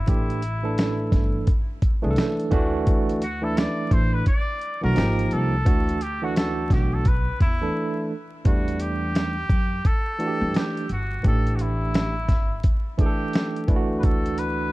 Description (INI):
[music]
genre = hip hop, jazz-hop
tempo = 86 BPM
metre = 4/4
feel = swing 61% on 16ths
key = unclear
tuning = A4 = 439 Hz
[part]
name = trumpet with straight mute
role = melody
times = 0.0-14.7 s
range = E4 to D5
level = -30 LUFS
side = left 1 dB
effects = tape echo
[part]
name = barky tine electric piano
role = accompaniment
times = 0.1-14.7 s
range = E3 to A4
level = -26 LUFS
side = right 2 dB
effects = medium stereo tremolo
[part]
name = upright bass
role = bass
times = 0.1-14.7 s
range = G1 to G2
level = -27 LUFS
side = equal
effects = none
[part]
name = dusty soul sampler-style drum kit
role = drums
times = 0.1-14.6 s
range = hi-hat, kick drum, snare drum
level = -22 LUFS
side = equal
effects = vintage 12-bit sampler grit
[sound]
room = small room ambience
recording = dark, warm production, vinyl crackle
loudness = -20 LUFS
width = side -19 dB against mid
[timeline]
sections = 0.0-8.5 A section; 8.5-14.7 B section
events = muted trumpet solo 0.0-8.5; break 7.8-8.5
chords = 0.1 A7(no3); 2.5 Dadd9; 5.0 G#maj7; 5.7 Gmaj13 (rootless); 8.5 Em11; 11.2 A7sus4; 13.7 D69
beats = | 0.08 0.78 1.48 2.17 | 2.87 3.57 4.27 4.97 | 5.66 6.36 7.06 7.76 | 8.45 9.15 9.85 10.55 | 11.24 11.94 12.64 13.34 | 14.04